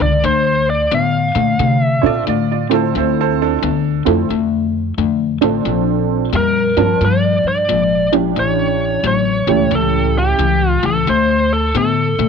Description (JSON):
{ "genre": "blues", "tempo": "89 BPM", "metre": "4/4", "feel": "swing 64% on 8ths", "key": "D minor", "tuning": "A4 = 445 Hz", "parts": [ { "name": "biting lead guitar", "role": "melody", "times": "0.0-2.2, 6.4-12.3 s", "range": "G4 to F5", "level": "-17 LUFS", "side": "right 1 dB", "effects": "overdrive" }, { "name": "overdriven electric guitar", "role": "riff", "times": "0.0-12.3 s", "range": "G2 to B3", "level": "-18 LUFS", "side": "left 12 dB", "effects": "none" }, { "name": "upright bass", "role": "bass", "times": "0.0-12.3 s", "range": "G#1 to C3", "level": "-20 LUFS", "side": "right 1 dB", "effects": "none" }, { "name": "bright upright piano", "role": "second line", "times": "2.0-4.1 s", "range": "D4 to D5", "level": "-21 LUFS", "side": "right 15 dB", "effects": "none" }, { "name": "honky-tonk upright piano", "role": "accompaniment", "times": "2.0-10.3 s", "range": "A3 to A5", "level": "-18 LUFS", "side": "right 16 dB", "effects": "none" } ], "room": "light reverb", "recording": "1960s-style stereo with parts hard left and right", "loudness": "-13 LUFS", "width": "side -6 dB against mid", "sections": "0.0-12.3 A section", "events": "none", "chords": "0.2 Dm7; 5.7 Bbmaj7; 8.4 A7; 11.1 D7(no3)" }